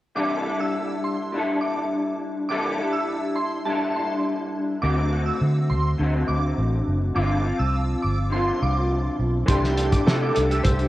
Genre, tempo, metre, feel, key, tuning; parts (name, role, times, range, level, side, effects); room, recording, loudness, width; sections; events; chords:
indie pop, bedroom pop; 103 BPM; 4/4; straight; C major; A4 = 440 Hz
shimmering bell with halo; second line; 0.2-10.7 s; A5 to E6; -30 LUFS; right 2 dB; ensemble chorus, analog chorus, analog delay
electric guitar through a small old amp; accompaniment; 0.2-10.9 s; G2 to A4; -25 LUFS; left 1 dB; ensemble chorus, warbly pitch drift
vintage muted fingered electric bass; bass; 4.8-10.9 s; F#1 to D3; -23 LUFS; equal
chorused retro synth keys; melody; 9.5-10.9 s; G4 to C5; -25 LUFS; equal; tremolo, wide subtle chorus, analog delay
bright upright piano; accompaniment; 9.5-10.9 s; E3 to A4; -33 LUFS; right 1 dB
cloth-damped thuddy drum kit; drums; 9.5-10.9 s; hi-hat, kick drum, snare drum; -22 LUFS; equal
light reverb, small room reverb; worn, warbling old tape, cassette tape, warbly pitch drift; -21 LUFS; side -15 dB against mid
0.2-9.5 A section; 9.5-10.9 B section
0.2 C69; 4.8 D7; 7.2 G7sus4; 9.5 C69